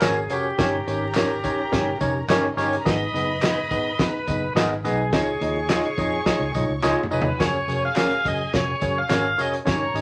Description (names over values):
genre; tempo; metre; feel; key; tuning
uptempo 1960s-style soul; 106 BPM; 4/4; straight; unclear; A4 = 442 Hz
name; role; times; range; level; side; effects
bright tonewheel organ; melody; 0.0-10.0 s; G4 to F5; -29 LUFS; equal; overdrive, slow rotary speaker
warm studio violin section; second line; 0.0-10.0 s; Cb4 to Db6; -37 LUFS; equal; none
tine electric piano; accompaniment; 0.0-10.0 s; G2 to Eb5; -27 LUFS; equal; overdrive
electric guitar through a small old amp; stabs; 0.0-9.2 s; Db4 to Eb5; -30 LUFS; equal; none
vintage muted fingered electric bass; bass; 0.0-10.0 s; F1 to F2; -32 LUFS; equal; none
warm soul drum kit; drums; 0.0-10.0 s; hi-hat, kick drum, snare drum, toms; -28 LUFS; equal; none
handclaps and tambourine; percussion; 0.0-10.0 s; none; -38 LUFS; equal; none
room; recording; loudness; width
wet studio ambience, RT60 0.5 s; vinyl crackle, lossy compression artefacts; -23 LUFS; mono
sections
0.0-10.0 A section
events
drum fill 6.8-7.4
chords
0.0 Gbadd9; 0.6 Eb7/G; 2.9 Abm; 5.1 Dbadd9; 7.4 Gbadd9